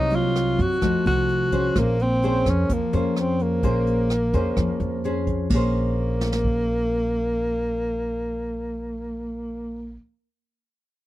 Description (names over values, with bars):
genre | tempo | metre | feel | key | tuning
bossa nova | 128 BPM | 4/4 | straight | Bb minor | A4 = 440 Hz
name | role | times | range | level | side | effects
mellow tenor saxophone | melody | 0.0-10.0 s | Bb3 to Gb4 | -24 LUFS | equal | none
nylon-string guitar | accompaniment | 0.0-10.1 s | C3 to C5 | -27 LUFS | left 2 dB | none
upright bass | bass | 0.0-10.0 s | Bb1 to Gb2 | -25 LUFS | equal | none
jazz brush drum kit | drums | 0.1-6.6 s | crash cymbal, hi-hat, kick drum, rim click, snare drum | -28 LUFS | equal | none
room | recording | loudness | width
small room ambience | dry, close 1970s-style studio recording | -21 LUFS | side -15 dB against mid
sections
0.0-5.5 A section; 5.5-9.3 B section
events
none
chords
0.0 Cm7b5; 0.8 F7b9; 1.8 Bbm9